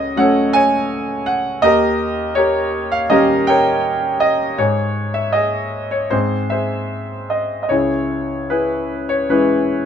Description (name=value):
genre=classical, lyrical solo piano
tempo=74-83 BPM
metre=4/4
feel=rubato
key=C# minor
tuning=A4 = 440 Hz
part: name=clear concert grand piano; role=solo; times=0.0-9.9 s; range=C#2 to G#5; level=-15 LUFS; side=equal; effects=none
room=moderate booth ambience, RT60 0.2 s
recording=none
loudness=-15 LUFS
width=side -8 dB against mid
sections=0.0-9.9 A section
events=none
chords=0.0 F#m/C#; 1.6 D#7; 4.6 N.C.; 6.1 G#; 7.7 C#m